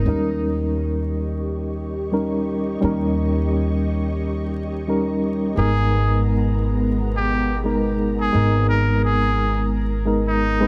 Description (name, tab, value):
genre	trip hop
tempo	87 BPM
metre	4/4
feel	swing 59% on 16ths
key	unclear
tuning	A4 = 440 Hz
part	mellow reed electric piano	accompaniment	0.0-10.7 s	G3 to B4	-25 LUFS	equal	tremolo, tape echo
part	upright bass	bass	0.0-10.7 s	G#1 to D#2	-25 LUFS	equal	none
part	string machine, cellos	sustained chords	0.1-10.7 s	G#3 to C#6	-31 LUFS	equal	ensemble chorus
part	trumpet with straight mute	melody	5.6-10.7 s	D#4 to A#4	-28 LUFS	equal	tape echo
room	light reverb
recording	vinyl crackle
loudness	-21 LUFS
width	mono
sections	0.1-10.7 A section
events	none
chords	0.1 D#7; 5.6 G#madd9